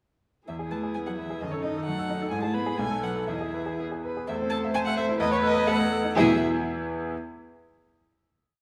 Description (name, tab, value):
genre	quick classical-period movement for piano quintet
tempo	117-134 BPM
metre	2/4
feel	rubato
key	E major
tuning	A4 = 440 Hz
part	rich violin	melody	0.5-6.4 s	C#5 to B5	-34 LUFS	equal	none
part	dark cello	second line	0.5-6.4 s	B2 to B3	-33 LUFS	equal	none
part	warm violin	second line	0.5-6.4 s	G#4 to C5	-36 LUFS	equal	none
part	bright grand piano	accompaniment	0.5-7.1 s	B1 to A5	-33 LUFS	equal	none
part	warm viola	accompaniment	0.5-6.4 s	D#4 to C5	-33 LUFS	equal	none
room	wet recital hall reverb, RT60 1.4 s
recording	none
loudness	-27 LUFS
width	mono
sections	0.5-4.3 A section; 4.3-6.2 coda; 6.2-7.1 final chord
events	none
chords	0.5 E; 1.4 D#dim/F#; 2.3 E/G#; 2.8 B7; 3.3 E; 4.3 Am/E; 5.2 B7/E; 6.2 E